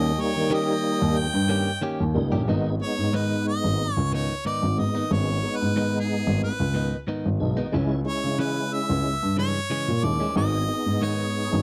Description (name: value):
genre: blues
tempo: 91 BPM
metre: 4/4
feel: swing 53% on 16ths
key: G# harmonic minor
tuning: A4 = 440 Hz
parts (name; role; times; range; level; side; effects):
- bright harmonica; melody; 0.0-11.6 s; G#4 to G5; -31 LUFS; equal; none
- tonewheel organ; accompaniment; 0.0-11.6 s; G3 to G#4; -30 LUFS; equal; slow rotary speaker, overdrive, chorus vibrato
- clear horn section; sustained chords; 0.0-2.5 s; C#5 to G5+23c; -39 LUFS; equal; none
- direct-recorded clean electric guitar; stabs; 0.0-11.2 s; G#2 to G4; -32 LUFS; equal; none
- dark baby grand piano; bass; 0.0-11.6 s; G#1 to D#3; -27 LUFS; equal; none
room: small room ambience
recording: dry, close 1970s-style studio recording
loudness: -25 LUFS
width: mono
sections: 0.0-2.5 A section; 2.5-11.6 B section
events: harmonica solo 0.0-2.5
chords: 0.0 D#7; 2.5 G#m; 7.7 C#m; 10.4 G#m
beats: 0.51 1.17 1.82 | 2.48 3.13 3.79 4.45 | 5.11 5.76 6.42 7.08 | 7.74 8.39 9.05 9.71 | 10.37 11.02